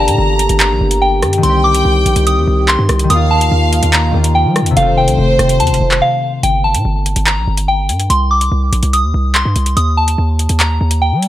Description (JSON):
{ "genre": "hip hop, drill", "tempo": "144 BPM", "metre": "4/4", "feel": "half-time", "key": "G minor", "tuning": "A4 = 441 Hz", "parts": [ { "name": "soft synth bell", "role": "melody", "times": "0.0-11.3 s", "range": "F5 to Eb6", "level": "-16 LUFS", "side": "equal", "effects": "chorus, ping-pong delay" }, { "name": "warm studio violin section", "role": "second line", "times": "0.0-6.4 s", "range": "C5 to Bb5", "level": "-19 LUFS", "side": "right 1 dB", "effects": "ping-pong delay" }, { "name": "concert harp", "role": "accompaniment", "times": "0.0-8.1 s", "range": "C3 to G4", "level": "-19 LUFS", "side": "left 4 dB", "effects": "none" }, { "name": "warm French horn section", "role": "sustained chords", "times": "0.0-6.4 s", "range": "C3 to G4", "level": "-20 LUFS", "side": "equal", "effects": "none" }, { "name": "hard-hitting 808-style bass", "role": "bass", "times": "0.0-11.3 s", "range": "F1 to G3", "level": "-14 LUFS", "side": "equal", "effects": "none" }, { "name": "drill drum kit", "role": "drums", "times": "0.1-11.3 s", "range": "handclaps, hi-hat, rim click", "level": "-17 LUFS", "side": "equal", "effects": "none" } ], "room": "small room ambience", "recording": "none", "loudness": "-10 LUFS", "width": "side -13 dB against mid", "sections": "0.0-6.4 A section; 6.4-11.3 B section", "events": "break 6.0-6.4", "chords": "0.0 Gm; 1.4 Cm; 3.1 Ebsus2; 4.8 F; 6.4 Gm; 8.1 Cm; 9.8 Eb5" }